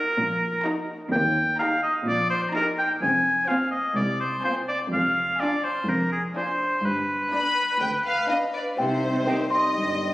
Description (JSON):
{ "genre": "cinematic", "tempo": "125 BPM", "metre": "4/4", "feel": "straight", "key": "C minor", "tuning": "A4 = 439 Hz", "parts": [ { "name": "warm studio violin section", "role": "melody", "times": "0.0-9.4 s", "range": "G4 to B5", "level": "-30 LUFS", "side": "left 2 dB", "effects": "none" }, { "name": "clear oboe", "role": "second line", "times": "0.0-9.4 s", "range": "Ab4 to Ab5", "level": "-24 LUFS", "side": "equal", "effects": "none" }, { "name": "warm studio violin section", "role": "second line", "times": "0.0-10.1 s", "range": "D4 to Eb5", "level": "-33 LUFS", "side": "left 1 dB", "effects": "none" }, { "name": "warm studio viola section", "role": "accompaniment", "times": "0.0-9.3 s", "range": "C4 to Eb4", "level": "-32 LUFS", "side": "equal", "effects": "none" }, { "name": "dark studio cello section", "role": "bass", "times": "0.2-10.1 s", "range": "C2 to C3", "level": "-29 LUFS", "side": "equal", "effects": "none" }, { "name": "rich studio double bass section", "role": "bass", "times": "0.2-10.1 s", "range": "F1 to Eb2", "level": "-36 LUFS", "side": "equal", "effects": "none" }, { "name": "worn celesta", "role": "melody", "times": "8.3-10.1 s", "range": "F5 to C6", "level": "-26 LUFS", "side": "equal", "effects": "none" }, { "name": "dark French horn section", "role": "sustained chords", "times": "8.8-10.1 s", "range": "G3 to Eb4", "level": "-28 LUFS", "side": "left 1 dB", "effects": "none" }, { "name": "concert flute", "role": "second line", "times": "9.3-9.4 s", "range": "G5", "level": "-33 LUFS", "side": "right 1 dB", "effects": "none" }, { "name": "mellow bassoon", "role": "accompaniment", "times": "9.3-9.4 s", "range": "Eb3", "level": "-35 LUFS", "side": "equal", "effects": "none" } ], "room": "wet scoring stage reverb, RT60 2.1 s", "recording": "recorded on a phone in the room, studio reverb, compression", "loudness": "-22 LUFS", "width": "side -16 dB against mid", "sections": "0.0-8.8 A section; 8.8-10.1 B section", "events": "none", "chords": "0.0 Ebm; 3.0 Fm; 4.9 Ddim/F; 6.8 G; 8.8 Cm", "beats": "0.17 0.65 | 1.12 1.60 2.07 2.55 | 3.02 3.50 3.97 4.45 | 4.93 5.41 5.88 6.36 | 6.85 7.33 7.81 8.30 | 8.78 9.27 9.75" }